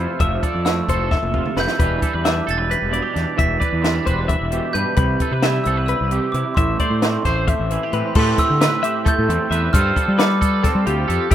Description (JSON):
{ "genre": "math rock and midwest emo", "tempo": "264 BPM (eighths)", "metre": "7/8", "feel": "straight", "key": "A minor", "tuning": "A4 = 440 Hz", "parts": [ { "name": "twangy electric guitar", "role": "accompaniment", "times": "0.0-11.3 s", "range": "A2 to C5", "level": "-24 LUFS", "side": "right 9 dB", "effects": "analog chorus" }, { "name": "twelve-string electric guitar", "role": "arpeggios", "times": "0.0-11.3 s", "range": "G4 to E5", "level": "-25 LUFS", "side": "left 8 dB", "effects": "spring reverb, digital delay" }, { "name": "fuzz fingered electric bass", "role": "bass", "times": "0.0-11.3 s", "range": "E1 to G3", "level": "-22 LUFS", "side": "equal", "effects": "overdrive" }, { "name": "glockenspiel with soft plastic mallets", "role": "melody", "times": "0.2-11.3 s", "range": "C6 to B6", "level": "-24 LUFS", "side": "right 2 dB", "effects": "none" }, { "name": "compact cocktail drum kit", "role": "drums", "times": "0.2-11.3 s", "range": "crash cymbal, hi-hat, kick drum, snare drum, toms", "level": "-20 LUFS", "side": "equal", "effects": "none" } ], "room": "light reverb", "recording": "rough home demo mix", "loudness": "-16 LUFS", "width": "side -11 dB against mid", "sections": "0.0-8.2 A section; 8.2-11.3 B section", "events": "drum fill 1.1-1.8", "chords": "0.0 Fmaj7; 1.8 Em7; 5.0 Cmaj7; 6.6 Am7; 8.2 Am9; 9.7 G9sus4" }